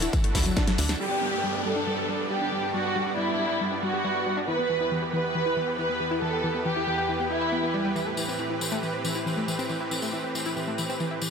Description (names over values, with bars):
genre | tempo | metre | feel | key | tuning
uplifting trance | 138 BPM | 4/4 | straight | G major | A4 = 441 Hz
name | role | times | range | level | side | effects
supersaw pad | sustained chords | 0.0-11.3 s | E2 to D5 | -31 LUFS | right 2 dB | sidechain pumping
analog pluck | arpeggios | 0.0-11.3 s | E3 to E5 | -31 LUFS | left 2 dB | chorus, sidechain pumping, dub echo
tight sequencer bass | bass | 0.0-1.0 s | D2 | -28 LUFS | equal | sidechain pumping
big-room dance drum kit | drums | 0.0-11.3 s | hi-hat, snare drum | -35 LUFS | left 1 dB | none
tambourine | percussion | 0.0-1.0, 8.0-11.3 s | none | -35 LUFS | left 3 dB | none
electronic kick drum | drums | 0.1-0.7 s | none | -25 LUFS | equal | studio reverb
dark studio violin section | second line | 1.0-7.9 s | E4 to B4 | -28 LUFS | right 1 dB | dub echo
downlifter | sound effects | 1.0-4.5 s | none | -35 LUFS | right 2 dB | none
room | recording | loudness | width
moderate huge ambient reverb, RT60 8.0 s | none | -24 LUFS | side -6 dB against mid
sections
0.0-1.0 A section; 1.0-11.3 B section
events
drum fill 0.3-1.0; band accent 0.9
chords
0.0 Dadd9; 1.0 G; 4.5 Em; 8.0 Am7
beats
0.13 0.57 | 1.00 1.44 1.87 2.31 | 2.74 3.18 3.61 4.04 | 4.48 4.92 5.35 5.78 | 6.22 6.65 7.09 7.52 | 7.96 8.39 8.83 9.26 | 9.70 10.13 10.57 11.00